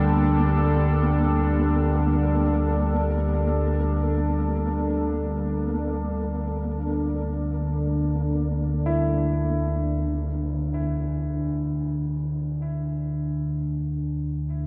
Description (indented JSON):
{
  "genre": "dark ambient drone",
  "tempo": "free time",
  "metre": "none",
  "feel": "none",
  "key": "unclear",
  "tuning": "A4 = 443 Hz",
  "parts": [
    { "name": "deep dark ambient pad", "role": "sustained chords", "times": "0.0-14.7 s", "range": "D3 to E5", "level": "-29 LUFS", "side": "equal", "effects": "chorus, built-in reverb" },
    { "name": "clear concert grand piano", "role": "arpeggios", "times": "0.0-14.7 s", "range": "E2 to E4", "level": "-36 LUFS", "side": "equal", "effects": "delay" },
    { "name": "deep rumbling drone", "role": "drone", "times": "0.0-14.7 s", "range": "D2 to D3", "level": "-27 LUFS", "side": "equal", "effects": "built-in reverb" },
    { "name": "flickering grainy texture", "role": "texture", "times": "0.0-10.1 s", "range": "Bb3", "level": "-34 LUFS", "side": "equal", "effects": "built-in reverb" },
    { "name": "tam-tam", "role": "percussion", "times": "10.1-10.4 s", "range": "none", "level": "-49 LUFS", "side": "equal", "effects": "low-pass filter on cymbals" }
  ],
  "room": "wet cathedral reverb, RT60 4.8 s",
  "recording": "dark, warm production",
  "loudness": "-25 LUFS",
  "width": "mono",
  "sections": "0.0-10.1 A section; 10.1-14.7 B section",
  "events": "none",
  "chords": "0.0 Gm/D; 10.1 D5",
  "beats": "free time"
}